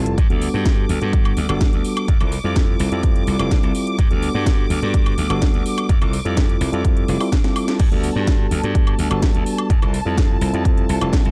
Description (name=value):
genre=filtered disco house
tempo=126 BPM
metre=4/4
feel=straight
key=G major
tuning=A4 = 440 Hz
part: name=mellow tine electric piano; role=accompaniment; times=0.0-11.3 s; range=G3 to A4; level=-25 LUFS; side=equal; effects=phaser, sidechain pumping
part: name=warm symphonic violin section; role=sustained chords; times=0.0-11.3 s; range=A5 to D6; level=-34 LUFS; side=equal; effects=sidechain pumping
part: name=glassy slap bass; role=bass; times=0.0-11.3 s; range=F1 to G2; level=-26 LUFS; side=equal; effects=sidechain pumping
part: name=house drum kit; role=drums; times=0.1-11.3 s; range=crash cymbal, hi-hat, snare drum, woodblock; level=-30 LUFS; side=equal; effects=sidechain pumping on hats, sidechain pumping on cymbals, sidechain pumping on perc
part: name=electronic kick drum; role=drums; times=0.2-11.2 s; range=none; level=-20 LUFS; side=equal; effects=none
room=little or no reverb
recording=dry, gritty hardware recording, cassette tape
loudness=-18 LUFS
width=mono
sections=0.0-11.3 A section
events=drum fill 7.4-7.8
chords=0.2 Gmaj9; 2.1 Fmaj9; 4.0 Gmaj9; 5.9 Fmaj9; 7.8 Gmaj9; 9.7 Fmaj9